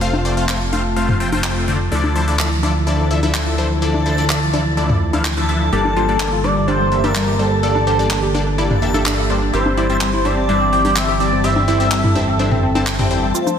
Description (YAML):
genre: progressive house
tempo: 126 BPM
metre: 4/4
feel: straight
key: unclear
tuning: A4 = 441 Hz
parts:
  - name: airy breathy pad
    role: sustained chords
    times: 0.0-13.6 s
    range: C3 to A5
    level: -24 LUFS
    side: right 1 dB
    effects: chorus
  - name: supersaw stab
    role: stabs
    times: 0.0-13.6 s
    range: G2 to A5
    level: -21 LUFS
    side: left 3 dB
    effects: phaser, low-pass filter, ping-pong delay
  - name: fat analog bass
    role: bass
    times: 0.0-13.3 s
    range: F1 to D2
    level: -20 LUFS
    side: right 1 dB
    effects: none
  - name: backwards swelling texture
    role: texture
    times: 0.0-13.6 s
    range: A5 to C6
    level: -29 LUFS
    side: left 2 dB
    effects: built-in reverb
  - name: electronic congas and toms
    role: percussion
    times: 0.1-13.6 s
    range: none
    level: -21 LUFS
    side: left 2 dB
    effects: none
  - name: electronic handclaps and shaker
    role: drums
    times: 0.5-13.6 s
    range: none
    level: -25 LUFS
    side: equal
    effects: high-pass filter on perc, high-pass filter on hats, high-pass filter on snare, high-pass filter on room
  - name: expressive synth lead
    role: melody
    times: 5.7-13.6 s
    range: A4 to E5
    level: -20 LUFS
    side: equal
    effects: wide subtle chorus, dub echo
  - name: glassy wavetable pluck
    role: arpeggios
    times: 5.7-13.5 s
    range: F3 to A4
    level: -23 LUFS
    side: equal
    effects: chorus, ping-pong delay
  - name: riser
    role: sound effects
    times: 13.3-13.6 s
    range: none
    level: barely audible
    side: none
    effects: none
room: moderate lush hall reverb, RT60 2.2 s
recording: dense, heavily limited modern master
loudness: -14 LUFS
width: side -8 dB against mid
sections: 0.0-13.3 A section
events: none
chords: 0.0 F; 1.9 Dmadd9; 5.7 Gmadd9; 9.5 C/G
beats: | 0.01 0.49 0.96 1.44 | 1.92 2.39 2.87 3.35 | 3.82 4.30 4.77 5.25 | 5.73 6.20 6.68 7.16 | 7.63 8.11 8.58 9.06 | 9.54 10.01 10.49 10.96 | 11.44 11.92 12.39 12.87 | 13.35